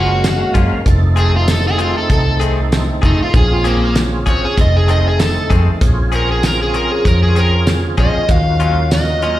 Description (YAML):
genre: straight-eighth soul blues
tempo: 97 BPM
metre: 4/4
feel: swing 53% on 16ths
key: Bb minor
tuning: A4 = 441 Hz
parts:
  - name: overdriven semi-hollow guitar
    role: melody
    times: 0.0-9.4 s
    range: Bb3 to F5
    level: -18 LUFS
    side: equal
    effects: slapback echo
  - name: tonewheel organ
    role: accompaniment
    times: 0.0-9.4 s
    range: Ab3 to F5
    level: -22 LUFS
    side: right 3 dB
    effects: slow rotary speaker, overdrive, chorus vibrato, slapback echo
  - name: direct-recorded clean electric guitar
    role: stabs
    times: 0.0-9.4 s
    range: Eb3 to G#4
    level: -23 LUFS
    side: left 6 dB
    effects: slapback echo
  - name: vintage muted fingered electric bass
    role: bass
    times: 0.0-9.4 s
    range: F1 to Gb2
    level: -15 LUFS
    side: equal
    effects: none
  - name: damped 70s drum kit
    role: drums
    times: 0.2-9.4 s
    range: hi-hat, kick drum, snare drum, tambourine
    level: -16 LUFS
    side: equal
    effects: none
room: little or no reverb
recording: live gig heard through the venue's PA, recital hall reverb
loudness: -12 LUFS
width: side -14 dB against mid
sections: 0.0-5.8 A section; 5.8-9.4 A section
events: overdriven electric guitar solo 0.0-9.4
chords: 0.0 Gbmaj7; 0.9 F7#9; 3.3 Bbm9; 4.6 F7#9; 5.8 Bbm9; 8.3 Ebm9